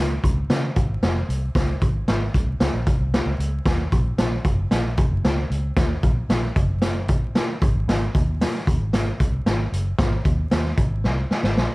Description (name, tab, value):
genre	uptempo 1960s-style soul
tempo	114 BPM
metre	4/4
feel	straight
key	unclear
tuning	A4 = 442 Hz
part	vintage muted fingered electric bass	bass	0.0-11.7 s	F1 to Db3	-24 LUFS	equal	none
part	raw garage drum kit	drums	0.2-11.7 s	hi-hat, kick drum, snare drum	-21 LUFS	equal	none
room	light reverb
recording	dark, warm production, vinyl crackle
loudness	-19 LUFS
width	side -22 dB against mid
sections	0.0-11.7 A section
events	drum fill 11.0-11.7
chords	none